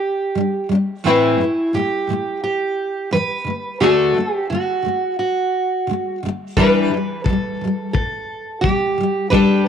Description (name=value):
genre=acoustic pop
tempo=87 BPM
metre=4/4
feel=straight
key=E minor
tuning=A4 = 440 Hz
part: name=fingerpicked steel-string acoustic guitar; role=melody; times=0.0-9.6 s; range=E4 to B4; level=-20 LUFS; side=right 3 dB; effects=none
part: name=nylon-string guitar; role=accompaniment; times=0.4-9.7 s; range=A2 to B4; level=-18 LUFS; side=left 2 dB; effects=double-tracked left and right
part: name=kick drum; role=drums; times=6.6-9.5 s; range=none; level=-21 LUFS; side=left 3 dB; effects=none
room=light reverb, small room ambience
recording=1960s-style stereo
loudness=-17 LUFS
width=side -8 dB against mid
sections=0.0-9.7 A section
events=none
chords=0.0 G5; 1.0 Amadd9; 3.5 D; 6.6 Em7